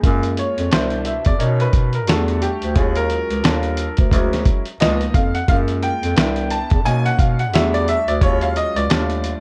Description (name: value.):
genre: hip hop, jazz-hop.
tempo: 88 BPM.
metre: 4/4.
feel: swing 59% on 16ths.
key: unclear.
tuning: A4 = 440 Hz.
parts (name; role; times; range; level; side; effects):
clear upright piano; accompaniment; 0.0-9.4 s; B2 to A5; -24 LUFS; equal; none.
mellow bass clarinet; bass; 0.0-9.3 s; C2 to B2; -23 LUFS; equal; none.
dusty soul sampler-style drum kit; drums; 0.0-9.4 s; hi-hat, kick drum, snare drum; -21 LUFS; equal; none.
room: light reverb, small room ambience.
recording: dark, warm production.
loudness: -18 LUFS.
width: mono.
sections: 0.0-9.4 A section.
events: upright piano solo 0.0-9.4.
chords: 0.0 F#maj9; 0.7 Cmaj7; 1.4 Bmaj7; 2.1 Em11; 2.8 D#m11; 3.4 D#maj9#11; 4.1 Dmaj9#11; 4.8 C#13; 5.5 F#maj9; 6.2 Cmaj7; 6.9 Bmaj7; 7.5 Em11; 8.2 D#m11; 8.9 D#maj9#11.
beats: | 0.04 0.72 1.40 2.08 | 2.76 3.44 4.13 4.81 | 5.49 6.17 6.85 7.54 | 8.22 8.90.